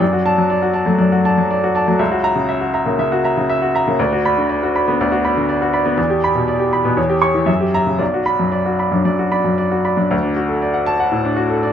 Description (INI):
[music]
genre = classical, virtuoso piano study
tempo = 120 BPM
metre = 4/4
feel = rubato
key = B minor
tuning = A4 = 439 Hz
[part]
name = bright baby grand piano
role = solo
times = 0.0-11.7 s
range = B1 to C#6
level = -14 LUFS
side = equal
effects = none
[sound]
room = moderate stone room reverb, RT60 1.0 s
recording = minimal, uncompressed stereo recording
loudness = -14 LUFS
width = side -9 dB against mid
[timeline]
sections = 0.0-10.1 A section; 10.1-11.7 B section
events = none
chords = 0.0 D/F#; 2.0 F#7/C#; 4.0 Bm/D; 6.0 Em7; 7.0 C#dim/E; 7.5 F#7b9; 8.0 Bm; 10.1 D